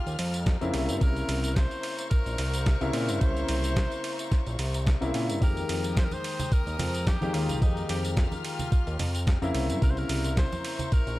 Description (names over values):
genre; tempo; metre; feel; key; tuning
nu-disco, nu disco; 109 BPM; 4/4; swing 55% on 16ths; F minor; A4 = 442 Hz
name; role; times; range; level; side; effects
breathy tenor saxophone; melody; 0.0-11.2 s; Eb4 to C5; -37 LUFS; equal; analog delay
warm grand piano; accompaniment; 0.0-11.2 s; Db3 to G4; -32 LUFS; left 2 dB; sidechain pumping
warm studio string section; sustained chords; 0.0-11.2 s; Ab3 to F6; -40 LUFS; left 3 dB; sidechain pumping
fat analog bass; bass; 0.1-11.2 s; Bb1 to Bb2; -30 LUFS; equal; none
dusty soul sampler-style drum kit; drums; 0.1-11.2 s; hi-hat, ride cymbal, snare drum, tambourine; -36 LUFS; right 1 dB; none
electronic kick drum; drums; 0.5-11.0 s; none; -24 LUFS; equal; none
congas; percussion; 6.1-10.9 s; none; -36 LUFS; right 2 dB; none
room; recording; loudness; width
small room ambience; dry, gritty hardware recording; -25 LUFS; side -18 dB against mid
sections
0.0-11.2 A section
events
none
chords
0.0 Fm11; 0.7 C7b9; 5.4 Fm11; 9.5 C7b9